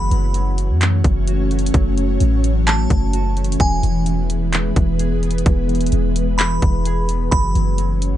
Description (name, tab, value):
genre	hip hop, atmospheric cloud-rap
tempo	129 BPM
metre	4/4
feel	half-time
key	F# minor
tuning	A4 = 440 Hz
part	glassy synth bell	melody	0.0-7.8 s	G#5 to B5	-25 LUFS	right 1 dB	chorus, ping-pong delay
part	ethereal airy pad	sustained chords	0.0-8.2 s	E3 to C#5	-23 LUFS	equal	ensemble chorus, built-in reverb, sidechain pumping
part	concert harp	arpeggios	0.0-8.2 s	E3 to G#4	-28 LUFS	equal	ping-pong delay
part	clean 808-style bass	bass	0.0-8.2 s	E1 to F#2	-18 LUFS	equal	none
part	trap drum kit	drums	0.1-8.1 s	handclaps, hi-hat, kick drum	-19 LUFS	equal	overdrive
room	light reverb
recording	nothing above 10.3 kHz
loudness	-15 LUFS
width	side -12 dB against mid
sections	0.0-8.2 A section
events	none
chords	0.0 F#m7; 3.6 E; 7.3 F#m7